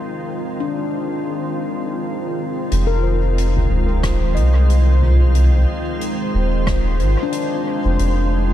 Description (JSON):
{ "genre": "ambient dub", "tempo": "91 BPM", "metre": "4/4", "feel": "swing 56% on 16ths", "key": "F dorian", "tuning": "A4 = 436 Hz", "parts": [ { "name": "soft additive organ-like pad", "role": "sustained chords", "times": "0.0-8.5 s", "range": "Eb3 to C5", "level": "-23 LUFS", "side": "right 1 dB", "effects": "ensemble chorus, built-in reverb" }, { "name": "handpan", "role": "arpeggios", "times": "0.6-8.5 s", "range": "D4 to Eb5", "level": "-27 LUFS", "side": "left 8 dB", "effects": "dub echo" }, { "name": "soft dub sub bass", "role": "bass", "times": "2.7-8.5 s", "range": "Eb1 to C2", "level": "-15 LUFS", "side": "equal", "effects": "none" }, { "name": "soft-mallet drum kit", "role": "drums", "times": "2.7-8.1 s", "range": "hi-hat, rim click, toms", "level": "-27 LUFS", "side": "equal", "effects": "dub echo" }, { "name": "backwards swelling texture", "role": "texture", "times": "4.0-8.5 s", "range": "C5", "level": "-32 LUFS", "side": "left 4 dB", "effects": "built-in reverb" }, { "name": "electronic kick drum", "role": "drums", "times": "4.0-6.8 s", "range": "none", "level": "-24 LUFS", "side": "equal", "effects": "none" } ], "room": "small room ambience", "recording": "dark, warm production", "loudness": "-16 LUFS", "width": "side -12 dB against mid", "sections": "0.0-2.7 A section; 2.7-8.5 B section", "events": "none", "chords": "0.0 Fm7" }